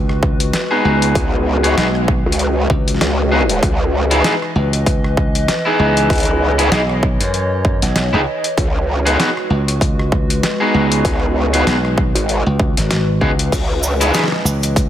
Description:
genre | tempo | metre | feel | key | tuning
glitch hop | 97 BPM | 4/4 | swing 57% on 16ths | C# minor | A4 = 442 Hz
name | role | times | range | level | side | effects
warbly tape-like pad | sustained chords | 0.0-14.9 s | E3 to D#5 | -22 LUFS | equal | chorus, built-in reverb, sidechain pumping
slap bass | bass | 0.0-14.9 s | G#1 to F#2 | -18 LUFS | equal | none
boom bap sampler-style drum kit | drums | 0.1-14.9 s | crash cymbal, hi-hat, rim click, snare drum | -21 LUFS | left 1 dB | none
electronic kick drum | drums | 0.2-14.9 s | none | -18 LUFS | equal | overdrive
electric guitar at the edge of break-up | stabs | 0.7-14.2 s | B3 to G#4 | -18 LUFS | equal | vintage 12-bit sampler grit, sidechain pumping, tape echo
growl bass | bass | 1.2-14.1 s | G#1 to C#2 | -17 LUFS | equal | chorus
cabasa | percussion | 13.5-14.9 s | none | -24 LUFS | right 3 dB | none
room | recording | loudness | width
light reverb, digital ambience | none | -13 LUFS | side -11 dB against mid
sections
0.0-14.9 A section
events
none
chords
0.0 G#m7/C#; 3.6 C#m9; 8.6 G#m7/C#; 13.5 C#m9

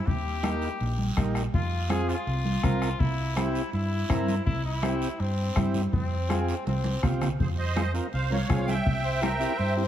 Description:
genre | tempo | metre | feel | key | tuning
latin, cumbia | 164 BPM | 4/4 | straight | F harmonic minor | A4 = 440 Hz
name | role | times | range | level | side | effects
clear trumpet | second line | 0.0-9.9 s | C4 to C5 | -34 LUFS | left 3 dB | none
hollow-body short-scale fingered electric bass | bass | 0.1-9.9 s | Bb1 to G2 | -29 LUFS | equal | none
bombo | percussion | 0.1-9.4 s | none | -29 LUFS | left 1 dB | none
guiro | percussion | 0.1-9.9 s | none | -42 LUFS | right 4 dB | none
congas | percussion | 0.3-9.8 s | none | -33 LUFS | right 1 dB | none
combo organ | accompaniment | 0.4-9.8 s | Bb3 to Bb4 | -32 LUFS | right 1 dB | none
musette accordion | melody | 7.4-9.7 s | Ab4 to G5 | -30 LUFS | right 2 dB | none
room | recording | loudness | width
moderate plate reverb, RT60 2.4 s | heard from further back in the room | -24 LUFS | side -11 dB against mid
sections
0.0-7.4 A section; 7.4-9.9 B section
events
drum fill 6.7-7.4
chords
0.1 Eb; 1.5 Fm; 3.0 C7; 5.9 Fm; 8.9 C7

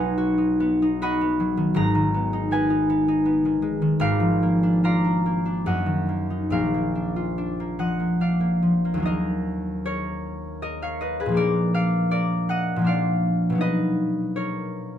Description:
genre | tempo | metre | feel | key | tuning
classical, solo harp piece | 68-82 BPM | 3/4 | rubato | Eb minor | A4 = 439 Hz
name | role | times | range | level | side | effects
concert harp | solo | 0.0-15.0 s | Ab1 to B5 | -21 LUFS | equal | none
room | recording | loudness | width
light reverb | none | -20 LUFS | side -10 dB against mid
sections
0.0-9.1 A section; 9.1-15.0 B section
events
none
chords
0.0 B; 1.8 Abm; 4.0 Bb7/Ab; 5.7 Ebm/Gb; 6.5 Bb; 9.1 Ebm; 11.4 Bb; 13.6 B

